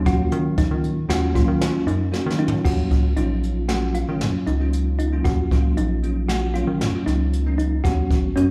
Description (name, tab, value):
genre	progressive instrumental, band music in an uneven meter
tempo	116 BPM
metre	5/4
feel	straight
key	Eb minor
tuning	A4 = 441 Hz
part	bell-like tine electric piano	accompaniment	0.0-8.5 s	Gb3 to Gb4	-28 LUFS	equal	ensemble chorus, slapback echo
part	rubbery square bass	bass	0.0-8.5 s	Ab1 to Eb3	-25 LUFS	equal	none
part	thumb-piano-like synth pluck	arpeggios	0.1-8.5 s	C#4 to Gb4	-29 LUFS	equal	chorus, slapback echo
part	jazz brush drum kit	drums	0.1-8.5 s	crash cymbal, hi-hat, kick drum, snare drum, toms	-26 LUFS	equal	none
room	light reverb, studio reverb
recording	live gig heard through the venue's PA, club reverb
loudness	-21 LUFS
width	mono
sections	0.0-2.7 A section; 2.7-8.5 B section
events	drum fill 2.1-2.7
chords	0.0 Ebm7; 7.8 Bsus2